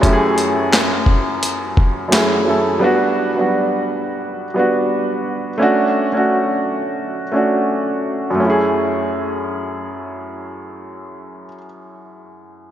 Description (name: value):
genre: hip hop, boom-bap hip-hop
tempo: 86 BPM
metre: 4/4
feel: swing 56% on 16ths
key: F# minor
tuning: A4 = 440 Hz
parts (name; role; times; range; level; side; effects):
- warm upright piano; accompaniment; 0.0-12.7 s; F#2 to B4; -17 LUFS; equal; cassette tape, high-pass filter, low-pass filter
- boom bap sampler-style drum kit; drums; 0.0-2.3 s; handclaps, hi-hat, kick drum, snare drum; -17 LUFS; equal; none
room: wet huge ambient reverb, RT60 4.6 s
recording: dreamy mix soaked in reverb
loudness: -15 LUFS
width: side -11 dB against mid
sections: 0.0-8.4 A section; 8.4-11.2 B section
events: none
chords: 0.0 F#m9; 2.8 Gmaj7/F#; 5.6 Dmaj7/A; 8.4 F#m9